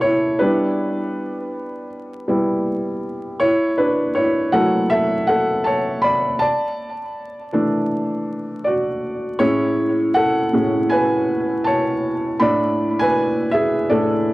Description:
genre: hip hop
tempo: 80 BPM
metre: 4/4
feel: swing 60% on 16ths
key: A major from 9.4 s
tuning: A4 = 440 Hz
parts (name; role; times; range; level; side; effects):
- felt-muted upright piano; solo; 0.0-14.3 s; A2 to B5; -17 LUFS; equal; cassette tape, low-pass filter, tape echo
room: moderate studio reverb, RT60 0.6 s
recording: home recording on cassette, vinyl crackle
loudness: -17 LUFS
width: side -19 dB against mid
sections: 0.0-9.4 A section; 9.4-14.3 B section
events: felt piano solo 0.0-9.4, 9.4-14.3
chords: 0.4 G6; 3.4 F#m7; 6.4 E9sus4; 9.4 Amaj9; 12.4 Asus24

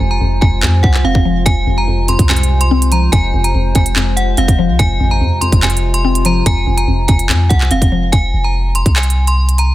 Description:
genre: hip hop, drill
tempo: 144 BPM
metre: 4/4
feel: half-time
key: F minor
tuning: A4 = 440 Hz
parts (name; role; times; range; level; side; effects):
- metallic FM bell; melody; 0.0-9.7 s; F5 to C6; -19 LUFS; equal; chorus, digital delay
- mallet-like synth pluck; accompaniment; 0.0-8.1 s; F2 to C4; -18 LUFS; left 1 dB; chorus, phaser
- warbly tape-like pad; sustained chords; 0.0-8.1 s; C3 to C5; -24 LUFS; equal; chorus, built-in reverb
- long sustained 808-style bass; bass; 0.0-9.7 s; F1 to F2; -14 LUFS; equal; none
- drill drum kit; drums; 0.4-9.7 s; handclaps, hi-hat, kick drum; -14 LUFS; equal; none
room: little or no reverb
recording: dense, heavily limited modern master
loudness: -11 LUFS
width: side -15 dB against mid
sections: 0.0-8.1 A section; 8.1-9.7 B section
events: break 0.0-1.5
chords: 0.0 Fm

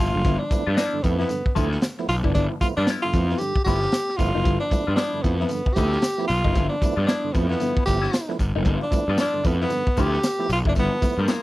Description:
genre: funk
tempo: 114 BPM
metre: 4/4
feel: swing 60% on 16ths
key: G mixolydian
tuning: A4 = 440 Hz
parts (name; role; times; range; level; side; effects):
- breathy tenor saxophone; melody; 0.0-11.4 s; Bb3 to G4; -25 LUFS; equal; none
- clean electric guitar; accompaniment; 0.0-11.4 s; F3 to F4; -30 LUFS; left 8 dB; wah, wide subtle chorus
- fuzz picked electric bass; bass; 0.0-11.3 s; F#1 to G2; -24 LUFS; equal; overdrive
- tambourine; percussion; 0.0-11.4 s; none; -41 LUFS; left 2 dB; none
- tonewheel organ; stabs; 0.1-11.3 s; G2 to E4; -30 LUFS; right 5 dB; overdrive, fast rotary speaker
- crunchy breakbeat drum kit; drums; 0.2-11.4 s; hi-hat, kick drum, snare drum; -24 LUFS; equal; none
room: small room ambience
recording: dry, close 1970s-style studio recording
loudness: -20 LUFS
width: side -17 dB against mid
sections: 0.0-11.4 A section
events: none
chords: 0.0 G13

